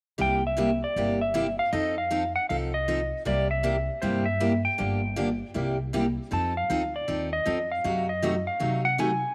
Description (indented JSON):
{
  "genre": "country, western swing",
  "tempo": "157 BPM",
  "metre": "4/4",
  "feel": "swing 63% on 8ths",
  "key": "unclear",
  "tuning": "A4 = 441 Hz",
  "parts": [
    { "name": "clean lap steel guitar", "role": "melody", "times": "0.2-9.3 s", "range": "C5 to A5", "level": "-30 LUFS", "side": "equal", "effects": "none" },
    { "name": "picked steel-string acoustic guitar", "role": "accompaniment", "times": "0.2-9.1 s", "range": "C3 to A4", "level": "-31 LUFS", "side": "equal", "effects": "none" },
    { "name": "upright bass", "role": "bass", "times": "0.2-9.2 s", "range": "G1 to C3", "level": "-34 LUFS", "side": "equal", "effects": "none" }
  ],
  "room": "light reverb, studio reverb",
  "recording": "none",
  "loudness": "-27 LUFS",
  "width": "mono",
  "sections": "0.2-9.3 A section",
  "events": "none",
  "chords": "0.2 C9; 1.7 F7; 3.3 C7; 4.8 Gm7; 5.5 C7; 6.3 F7; 7.8 F#dim7"
}